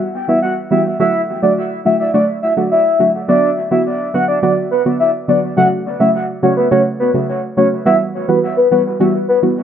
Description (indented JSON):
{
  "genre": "dancehall",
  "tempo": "105 BPM",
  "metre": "4/4",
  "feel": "straight",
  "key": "E dorian",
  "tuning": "A4 = 439 Hz",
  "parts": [
    { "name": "soft octave-layered synth lead", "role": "melody", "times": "0.3-9.4 s", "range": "B4 to F#5", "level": "-14 LUFS", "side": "left 1 dB", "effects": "chorus, phaser, dub echo" },
    { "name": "deep mellow chord stab", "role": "accompaniment", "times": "0.3-9.6 s", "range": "C#3 to F#4", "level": "-16 LUFS", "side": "right 1 dB", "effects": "chorus, dub echo" }
  ],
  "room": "moderate spring reverb, RT60 1.8 s",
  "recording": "echo-heavy mix",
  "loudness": "-12 LUFS",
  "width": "side -9 dB against mid",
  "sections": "0.0-5.6 A section; 5.6-9.6 B section",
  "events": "none",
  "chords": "0.0 Emadd9; 1.0 D; 3.3 Bm; 5.6 F#m; 7.9 Emadd9"
}